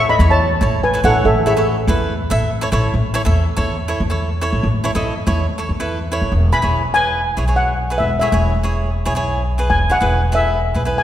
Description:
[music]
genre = calypso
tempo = 142 BPM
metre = 4/4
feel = straight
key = E major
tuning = A4 = 440 Hz
[part]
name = steel pan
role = melody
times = 0.0-1.9, 6.5-11.0 s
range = G#4 to B5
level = -17 LUFS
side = left 1 dB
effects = none
[part]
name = cavaquinho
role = accompaniment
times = 0.0-11.0 s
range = E4 to E5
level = -22 LUFS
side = right 2 dB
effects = none
[part]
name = upright bass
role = bass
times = 0.0-11.0 s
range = E1 to E2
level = -18 LUFS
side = equal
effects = none
[sound]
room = wet concert hall reverb, RT60 2.2 s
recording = recorded in a church or concert hall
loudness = -15 LUFS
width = side -11 dB against mid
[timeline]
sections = 0.0-2.9 A section; 2.9-6.3 B section; 6.3-11.0 C section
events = none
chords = 0.0 A; 6.3 E

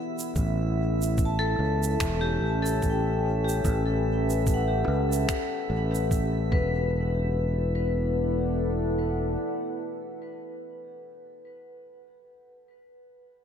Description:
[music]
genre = ambient dub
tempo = 73 BPM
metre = 4/4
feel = swing 60% on 16ths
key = E dorian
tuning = A4 = 440 Hz
[part]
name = deep dark ambient pad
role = sustained chords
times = 0.0-11.0 s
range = B3 to F#5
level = -31 LUFS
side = equal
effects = chorus, built-in reverb
[part]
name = vibraphone with hard mallets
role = arpeggios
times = 0.0-12.7 s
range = G4 to A5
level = -32 LUFS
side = left 4 dB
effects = tape echo
[part]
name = drifting glass-harmonics texture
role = texture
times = 0.0-6.9 s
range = E5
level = -40 LUFS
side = right 4 dB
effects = chorus, built-in reverb
[part]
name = shaker and finger snaps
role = drums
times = 0.2-6.3 s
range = none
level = -36 LUFS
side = right 4 dB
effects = none
[part]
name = overdriven fingered electric bass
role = bass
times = 0.4-9.4 s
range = E1 to C#2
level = -26 LUFS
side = equal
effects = none
[part]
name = electronic kick drum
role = drums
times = 0.4-6.7 s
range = none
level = -28 LUFS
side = equal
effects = none
[sound]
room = moderate echo chamber reverb, RT60 2.5 s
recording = none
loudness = -24 LUFS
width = side -8 dB against mid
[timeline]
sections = 0.0-6.9 A section; 6.9-10.2 B section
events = none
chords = 0.4 A7; 6.5 E5

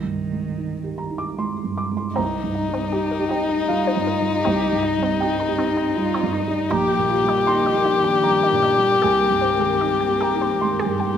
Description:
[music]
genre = neoclassical piano and strings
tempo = 77 BPM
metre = 3/4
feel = rubato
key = C minor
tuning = A4 = 440 Hz
[part]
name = dark cello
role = second line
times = 0.0-11.0 s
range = Eb3 to G4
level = -30 LUFS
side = right 4 dB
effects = none
[part]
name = felt-muted upright piano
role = accompaniment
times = 0.0-11.2 s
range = Bb1 to D6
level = -24 LUFS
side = right 4 dB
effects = none
[part]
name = dark violin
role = melody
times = 2.2-11.2 s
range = Eb4 to G4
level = -20 LUFS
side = left 5 dB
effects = none
[part]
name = warm analog pad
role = sustained chords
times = 2.2-11.2 s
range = Eb3 to Eb5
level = -31 LUFS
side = left 1 dB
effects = none
[part]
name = resonant blip pluck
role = arpeggios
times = 2.2-11.1 s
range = C4 to G5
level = -30 LUFS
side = equal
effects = phaser, slapback echo
[sound]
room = moderate scoring stage reverb, RT60 1.5 s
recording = none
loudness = -18 LUFS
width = side -8 dB against mid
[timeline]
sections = 0.0-2.2 A section; 2.2-11.2 A section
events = none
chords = 0.0 Abmaj7/C; 2.2 Cm7; 6.7 Eb/Bb; 9.0 Abmaj7/C

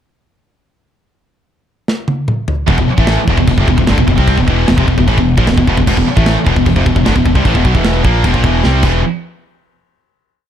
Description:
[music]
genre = heavy metal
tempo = 151 BPM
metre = 4/4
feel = straight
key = E phrygian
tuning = A4 = 441 Hz
[part]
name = tight metal drum kit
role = drums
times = 1.9-8.9 s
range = china cymbal, crash cymbal, kick drum, snare drum, toms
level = -15 LUFS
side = equal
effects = none
[part]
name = heavy high-gain guitar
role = riff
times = 2.7-9.0 s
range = E2 to C4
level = -17 LUFS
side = left 11 dB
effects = distortion
[part]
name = heavy high-gain guitar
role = riff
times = 2.7-9.0 s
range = E2 to C4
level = -17 LUFS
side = right 12 dB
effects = distortion
[part]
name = high-gain distorted guitar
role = riff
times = 2.7-9.0 s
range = E2 to C4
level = -20 LUFS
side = equal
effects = distortion
[part]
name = modern bright fingered electric bass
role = bass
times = 2.7-9.0 s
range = E1 to C2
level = -15 LUFS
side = equal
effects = none
[sound]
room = studio reverb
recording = dark, warm production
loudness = -10 LUFS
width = side -10 dB against mid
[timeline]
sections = 1.1-2.7 pickup bar; 2.7-9.0 riff; 9.0-10.5 final hit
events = drum fill 1.9-2.7, 8.6-9.0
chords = 1.1 N.C.; 2.7 Em; 8.6 C5; 8.8 E5; 9.0 N.C.

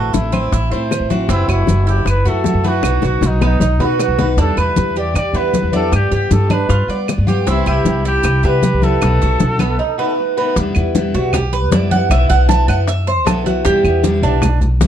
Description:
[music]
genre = latin, Cuban son and guajira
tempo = 155 BPM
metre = 4/4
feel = straight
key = E minor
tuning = A4 = 442 Hz
[part]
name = mellow trumpet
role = melody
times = 0.0-10.2 s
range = D#4 to D5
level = -21 LUFS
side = right 1 dB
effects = none
[part]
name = picked steel-string acoustic guitar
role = accompaniment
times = 0.0-14.9 s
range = B2 to F#4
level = -22 LUFS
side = left 2 dB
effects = none
[part]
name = Cuban tres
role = arpeggios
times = 0.0-14.6 s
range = B3 to A5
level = -20 LUFS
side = right 4 dB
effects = none
[part]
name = upright bass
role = bass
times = 0.0-14.9 s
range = F#1 to G3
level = -16 LUFS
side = equal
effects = none
[part]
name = bongos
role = percussion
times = 0.1-14.9 s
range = none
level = -24 LUFS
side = left 6 dB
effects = none
[part]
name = congas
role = percussion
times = 0.1-14.9 s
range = none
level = -21 LUFS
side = left 2 dB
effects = none
[part]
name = maracas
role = percussion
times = 0.1-14.9 s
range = none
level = -33 LUFS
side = right 8 dB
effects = none
[part]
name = claves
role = percussion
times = 0.3-14.6 s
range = none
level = -28 LUFS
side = right 2 dB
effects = none
[sound]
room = light reverb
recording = dark, warm production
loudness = -13 LUFS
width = side -10 dB against mid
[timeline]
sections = 0.0-10.6 A section; 10.6-14.9 B section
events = drum fill 2.8-4.4; break 9.8-10.6; Cuban tres solo 10.6-14.9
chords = 0.0 Am; 1.3 F#m7b5; 2.8 B; 4.4 Em7; 5.9 G7; 7.5 Cmaj7; 9.0 B7; 10.6 Em7; 12.1 B7sus4; 13.7 Em7

